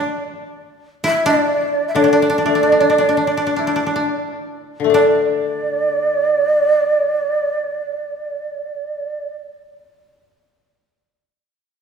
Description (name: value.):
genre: japanese traditional, Japanese chamber music.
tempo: 42-70 BPM.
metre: 2/4.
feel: rubato.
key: unclear.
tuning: A4 = 440 Hz.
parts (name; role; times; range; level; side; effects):
breathy mellow shakuhachi; melody; 0.0-9.3 s; D5 to E5; -18 LUFS; right 3 dB; none.
koto; second line; 0.0-9.3 s; D4 to E4; -20 LUFS; left 1 dB; none.
koto; accompaniment; 0.0-9.3 s; D3 to E4; -18 LUFS; left 4 dB; none.
room: wet scoring stage reverb, RT60 2.0 s.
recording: recorded in a church or concert hall.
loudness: -15 LUFS.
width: side -6 dB against mid.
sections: 0.0-4.9 A section; 4.9-10.5 B section.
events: slowing down 0.6-4.9.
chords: none.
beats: | 0.60 1.49 | 2.46 3.59 | 4.92 6.33 | 7.72 9.10.